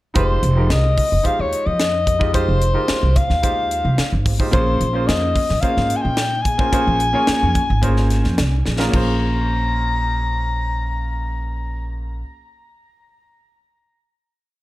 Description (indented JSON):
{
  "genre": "electric jazz fusion",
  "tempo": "109 BPM",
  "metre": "4/4",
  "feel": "straight",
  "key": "Bb dorian",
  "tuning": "A4 = 440 Hz",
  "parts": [
    { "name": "clear grand piano", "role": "accompaniment", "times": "0.1-12.2 s", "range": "Ab3 to Eb5", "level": "-24 LUFS", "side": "equal", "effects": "none" },
    { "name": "mellow soprano saxophone", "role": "melody", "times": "0.2-11.9 s", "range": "C5 to Bb5", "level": "-22 LUFS", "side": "left 2 dB", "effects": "plate reverb" },
    { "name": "upright bass", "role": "bass", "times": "0.2-12.2 s", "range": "F1 to Bb2", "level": "-20 LUFS", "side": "equal", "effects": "none" },
    { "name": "crisp fusion drum kit", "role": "drums", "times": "0.2-9.1 s", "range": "crash cymbal, hi-hat, kick drum, snare drum", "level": "-22 LUFS", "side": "equal", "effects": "none" }
  ],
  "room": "light reverb",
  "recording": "dark, warm production",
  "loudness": "-16 LUFS",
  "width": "side -17 dB against mid",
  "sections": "0.2-8.9 A section; 8.9-11.1 final chord",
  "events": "drum fill 8.7",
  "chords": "0.2 Fm7; 4.5 Bbm9"
}